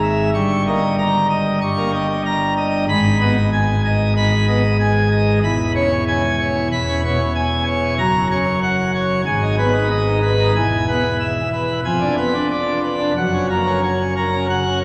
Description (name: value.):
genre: classical, organ toccata.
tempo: 94 BPM.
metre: 4/4.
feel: straight.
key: unclear.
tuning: A4 = 441 Hz.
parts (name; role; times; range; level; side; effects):
pipe organ, plenum; solo; 0.0-14.8 s; E1 to C#6; -18 LUFS; equal; none.
room: wet church reverb, RT60 3.2 s.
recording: none.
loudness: -18 LUFS.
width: mono.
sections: 0.0-14.8 A section.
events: none.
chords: 0.3 D#7/G; 2.9 G#m; 5.4 C#m7/E; 8.0 F#; 9.3 G#m; 10.6 E; 11.8 Fdim7; 13.2 F#.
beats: | 0.35 0.98 1.62 2.26 | 2.89 3.53 4.16 4.80 | 5.44 6.08 6.71 7.35 | 7.99 8.63 9.27 9.91 | 10.55 11.20 11.84 12.50 | 13.16 13.82 14.49.